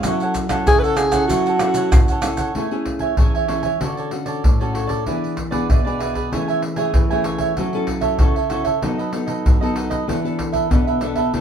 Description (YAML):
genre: samba and choro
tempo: 96 BPM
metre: 4/4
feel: straight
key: A major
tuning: A4 = 440 Hz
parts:
  - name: cavaquinho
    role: accompaniment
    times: 0.0-11.4 s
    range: D4 to G#5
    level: -23 LUFS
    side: right 6 dB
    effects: none
  - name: nylon-string guitar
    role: accompaniment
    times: 0.0-11.4 s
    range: A2 to A4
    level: -23 LUFS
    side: left 2 dB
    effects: none
  - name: maracas, surdo, pandeiro and tamborim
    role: percussion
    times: 0.0-11.4 s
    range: none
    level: -19 LUFS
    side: equal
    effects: none
  - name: breathy alto saxophone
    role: melody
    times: 0.7-2.2 s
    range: F#4 to B4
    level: -18 LUFS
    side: right 1 dB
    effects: none
room: wet studio ambience, RT60 0.5 s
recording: band playing live in one room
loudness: -17 LUFS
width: side -8 dB against mid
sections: 0.0-2.6 A section; 2.6-11.4 B section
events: none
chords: 0.1 F#m7; 2.6 Amaj7; 3.8 Dmaj7; 5.1 E7; 6.3 Amaj7/E; 7.6 F#m7; 8.8 B7/F#; 10.1 E7sus4